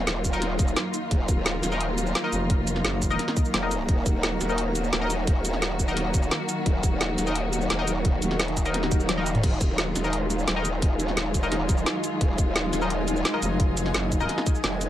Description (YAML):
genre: dark technical drum and bass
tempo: 173 BPM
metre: 4/4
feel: straight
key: Eb minor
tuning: A4 = 442 Hz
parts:
  - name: dark studio string section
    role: sustained chords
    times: 0.0-14.9 s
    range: Eb3 to Gb4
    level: -31 LUFS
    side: left 1 dB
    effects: vintage 12-bit sampler grit, sidechain pumping
  - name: growl bass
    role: bass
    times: 0.0-14.9 s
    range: Eb1 to F1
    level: -28 LUFS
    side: equal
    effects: chorus, overdrive, sidechain pumping
  - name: granular cloud pad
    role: texture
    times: 0.0-14.9 s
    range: Gb3 to Bb5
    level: -31 LUFS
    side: equal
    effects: built-in reverb, sidechain pumping
  - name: drum and bass drum kit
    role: drums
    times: 0.1-14.9 s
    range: crash cymbal, hi-hat, shaker, snare drum, toms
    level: -28 LUFS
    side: equal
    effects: none
  - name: electronic kick drum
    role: drums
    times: 0.2-14.5 s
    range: none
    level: -24 LUFS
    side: equal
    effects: none
  - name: band-passed chord stab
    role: stabs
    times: 0.3-14.9 s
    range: Eb4 to Eb5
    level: -32 LUFS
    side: left 3 dB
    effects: chorus, dub echo
  - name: growling FM bass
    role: bass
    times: 2.3-3.2, 13.4-14.3 s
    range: F1 to Gb1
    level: -27 LUFS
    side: equal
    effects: tube saturation
  - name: swell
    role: sound effects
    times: 8.9-9.4 s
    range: none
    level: -37 LUFS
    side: right 1 dB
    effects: none
room: light reverb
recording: lossy compression artefacts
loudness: -22 LUFS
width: side -12 dB against mid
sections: 0.0-14.9 A section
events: drum fill 9.1-9.4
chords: 0.0 Ebmadd9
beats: 0.07 0.42 0.76 | 1.11 1.46 1.80 2.15 | 2.50 2.85 3.19 3.54 | 3.89 4.23 4.58 4.93 | 5.27 5.62 5.97 6.31 | 6.66 7.01 7.35 7.70 | 8.05 8.39 8.74 9.09 | 9.44 9.78 10.13 10.47 | 10.82 11.17 11.52 11.86 | 12.21 12.56 12.90 13.25 | 13.60 13.94 14.29 14.64